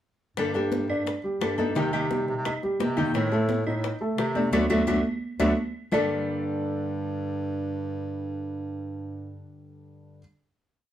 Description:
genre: latin, Cuban son and guajira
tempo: 173 BPM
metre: 4/4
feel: straight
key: G minor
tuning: A4 = 441 Hz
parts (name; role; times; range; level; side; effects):
- nylon-string guitar; accompaniment; 0.4-10.2 s; G2 to A4; -30 LUFS; left 3 dB; none
- mellow bass clarinet; bass; 0.4-9.5 s; D2 to C3; -30 LUFS; right 1 dB; none
- bongos; percussion; 0.4-6.0 s; none; -34 LUFS; left 4 dB; none
- claves; percussion; 0.4-6.0 s; none; -38 LUFS; right 2 dB; none
- congas; percussion; 0.4-6.0 s; none; -33 LUFS; right 1 dB; none
- dark baby grand piano; arpeggios; 0.5-10.2 s; Eb3 to Eb5; -28 LUFS; right 1 dB; none
room: moderate studio reverb, RT60 0.6 s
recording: heard from further back in the room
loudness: -24 LUFS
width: side -11 dB against mid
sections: 0.4-5.9 verse; 5.9-8.7 final chord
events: drum fill 4.5-5.9; band accent 4.5-5.9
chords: 0.4 Gmadd9; 1.8 Cm7; 3.1 Adim; 4.5 D; 5.9 Gmadd9

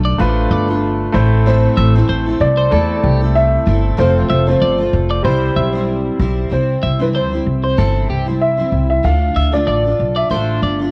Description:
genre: acoustic pop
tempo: 95 BPM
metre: 4/4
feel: swing 55% on 16ths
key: C major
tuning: A4 = 440 Hz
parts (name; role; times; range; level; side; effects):
- clear upright piano; melody; 0.0-10.9 s; B4 to A5; -21 LUFS; equal; cassette tape
- picked steel-string acoustic guitar; accompaniment; 0.0-10.9 s; A2 to C5; -24 LUFS; equal; double-tracked, cassette tape
- warm concert grand piano; accompaniment; 0.0-6.5 s; G3 to D5; -23 LUFS; equal; cassette tape
- twelve-string electric guitar; arpeggios; 0.0-10.8 s; G4 to E5; -26 LUFS; equal; cassette tape, analog delay
- upright bass; bass; 0.0-10.9 s; F1 to E2; -18 LUFS; equal; none
room: light reverb, small room ambience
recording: home recording on cassette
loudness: -15 LUFS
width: mono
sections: 0.0-6.5 A section; 6.5-10.9 B section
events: none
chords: 0.0 Dm; 1.1 Am; 4.0 F; 5.2 C; 9.0 Dm

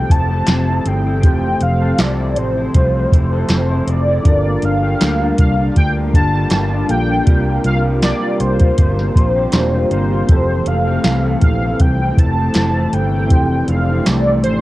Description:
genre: indie pop, bedroom pop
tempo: 80 BPM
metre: 4/4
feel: swing 55% on 16ths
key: F major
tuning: A4 = 440 Hz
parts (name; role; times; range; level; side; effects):
- warm velvety synth lead; melody; 0.0-14.6 s; C5 to A5; -21 LUFS; equal; analog chorus, cassette tape, tape echo
- electric guitar through a small old amp; accompaniment; 0.0-14.6 s; F2 to A4; -23 LUFS; left 2 dB; lush chorus, warbly pitch drift, cassette tape
- soft electric-piano-like synth keys; accompaniment; 0.0-14.6 s; E3 to C5; -25 LUFS; right 1 dB; chorus, tremolo, cassette tape
- lush unison pad; sustained chords; 0.0-14.6 s; C3 to F4; -23 LUFS; equal; chorus, cassette tape
- vintage muted fingered electric bass; bass; 0.0-14.6 s; E1 to D2; -18 LUFS; equal; none
- soft vintage rhythm box; drums; 0.1-14.6 s; hi-hat, kick drum, snare drum; -14 LUFS; equal; none
- group handclap; percussion; 0.5-14.3 s; none; -29 LUFS; right 2 dB; none
room: light reverb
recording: home recording on cassette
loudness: -13 LUFS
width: side -17 dB against mid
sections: 0.0-14.6 A section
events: none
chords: 0.0 Fmaj7; 4.3 Gm7; 7.3 C7sus4; 10.3 Fmaj7

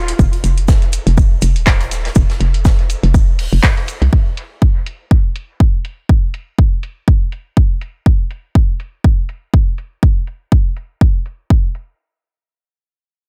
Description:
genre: minimal techno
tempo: 122 BPM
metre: 4/4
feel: swing 56% on 16ths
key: unclear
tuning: A4 = 441 Hz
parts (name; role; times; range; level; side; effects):
- hollow knocking FM bass; bass; 0.0-4.1 s; Eb1 to C2; -17 LUFS; equal; sidechain pumping
- booming analog drum machine; drums; 0.1-11.9 s; handclaps, hi-hat; -24 LUFS; equal; low-pass filter on hats, low-pass filter on snare, low-pass filter on room, dub echo
- electronic kick drum; drums; 0.2-11.6 s; none; -14 LUFS; equal; none
- raw garage drum kit; drums; 0.2-4.0 s; hi-hat, shaker, snare drum; -32 LUFS; equal; sidechain pumping on hats, high-pass filter on hats, high-pass filter on snare, sidechain pumping on perc, high-pass filter on perc, high-pass filter on room, dub echo
room: small room ambience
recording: echo-heavy mix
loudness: -15 LUFS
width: mono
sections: 0.0-12.0 A section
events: none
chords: none

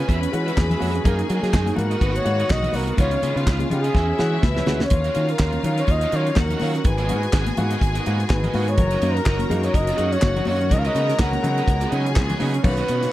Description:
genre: disco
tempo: 124 BPM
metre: 4/4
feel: swing 56% on 16ths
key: unclear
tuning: A4 = 440 Hz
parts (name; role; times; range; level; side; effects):
- breathy flugelhorn; melody; 0.0-13.1 s; G#4 to F#5; -26 LUFS; equal; none
- clear studio string section; second line; 0.0-13.1 s; E4 to B5; -30 LUFS; left 3 dB; none
- electric guitar at the edge of break-up; accompaniment; 0.0-13.1 s; B3 to E#5; -31 LUFS; right 7 dB; ensemble chorus
- clear studio string section; sustained chords; 0.0-13.1 s; D#3 to F#4; -32 LUFS; left 2 dB; none
- fingered electric bass; bass; 0.1-13.1 s; F#1 to F#3; -23 LUFS; equal; none
- damped 70s drum kit; drums; 0.1-13.1 s; crash cymbal, handclaps, hi-hat, kick drum, snare drum; -22 LUFS; equal; none
- congas; percussion; 0.1-13.0 s; none; -30 LUFS; left 3 dB; none
- clear grand piano; accompaniment; 0.3-13.1 s; G#2 to G#4; -30 LUFS; left 1 dB; none
room: light reverb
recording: dark, warm production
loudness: -18 LUFS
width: side -15 dB against mid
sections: 0.0-4.9 A section; 4.9-12.6 B section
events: drum fill 4.0-4.9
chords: 0.1 E69; 1.1 F#69; 1.8 G#m9; 3.0 C#9; 4.0 E69; 4.9 D#m9; 6.8 G#m9; 8.8 F#6; 10.7 C#9sus4

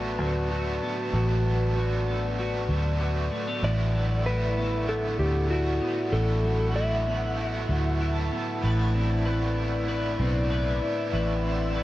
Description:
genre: dream pop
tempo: 96 BPM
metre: 4/4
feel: straight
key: unclear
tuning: A4 = 439 Hz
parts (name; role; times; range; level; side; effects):
- cranked stack guitar; accompaniment; 0.0-11.8 s; A2 to F#4; -34 LUFS; right 2 dB; overdrive, tremolo, wide subtle chorus
- warbly tape-like pad; sustained chords; 0.0-11.8 s; E4 to B5; -31 LUFS; left 1 dB; chorus, built-in reverb
- clean electric guitar; arpeggios; 0.0-11.8 s; A2 to B4; -31 LUFS; left 1 dB; analog chorus, ping-pong delay
- vintage muted fingered electric bass; bass; 0.0-11.8 s; A1 to D2; -27 LUFS; equal; none
- clean lap steel guitar; melody; 3.6-8.3 s; F#4 to E5; -30 LUFS; equal; ping-pong delay
- twinkling granular texture; texture; 4.2-11.3 s; D5 to A5; -40 LUFS; right 1 dB; built-in reverb, ping-pong delay
room: light reverb, digital ambience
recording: worn, warbling old tape, cassette tape, warbly pitch drift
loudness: -24 LUFS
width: side -15 dB against mid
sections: 0.0-11.8 A section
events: none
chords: 0.0 Bm7/A; 3.6 E9sus4/A; 8.6 Cmaj9/A

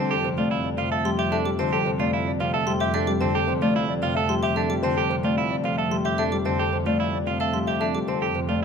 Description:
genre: classical, minimalist pattern music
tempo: 111 BPM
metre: 3/4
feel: straight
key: F major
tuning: A4 = 438 Hz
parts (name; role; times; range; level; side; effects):
- warm concert grand piano; melody; 0.0-8.6 s; G4 to F5; -27 LUFS; left 8 dB; none
- Celtic harp; accompaniment; 0.0-8.6 s; C3 to A3; -27 LUFS; left 2 dB; none
- clean electric guitar; arpeggios; 0.0-8.6 s; C4 to A4; -27 LUFS; right 9 dB; none
- xylophone with wooden mallets; arpeggios; 0.0-8.3 s; E5 to D6; -34 LUFS; left 2 dB; none
- rich symphonic double bass section; bass; 0.0-8.6 s; F2; -29 LUFS; right 5 dB; none
room: moderate recital hall reverb, RT60 1.3 s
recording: close, detailed microphones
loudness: -21 LUFS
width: side -6 dB against mid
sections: 0.0-8.6 A section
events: none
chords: 0.0 F69

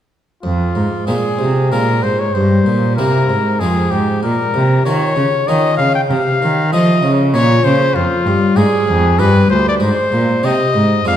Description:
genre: classical, baroque-style sonata movement with continuo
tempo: 96 BPM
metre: 3/4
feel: straight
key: F minor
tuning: A4 = 440 Hz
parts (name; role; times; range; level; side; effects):
- warm trumpet; melody; 0.4-11.2 s; F4 to G5; -17 LUFS; left 3 dB; none
- harpsichord; accompaniment; 0.4-11.2 s; D2 to G4; -17 LUFS; equal; none
- warm cello; bass; 0.4-11.2 s; D2 to F3; -16 LUFS; right 2 dB; none
room: wet recital hall reverb, RT60 1.8 s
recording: dark, warm production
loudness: -12 LUFS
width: side -10 dB against mid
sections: 0.4-11.2 A section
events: none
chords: 0.4 Fm; 2.3 C7/G; 3.6 Fm; 4.2 Bbm; 6.1 F7/C; 7.3 Bbm; 7.9 Ddim/F; 9.2 G; 9.8 Ab

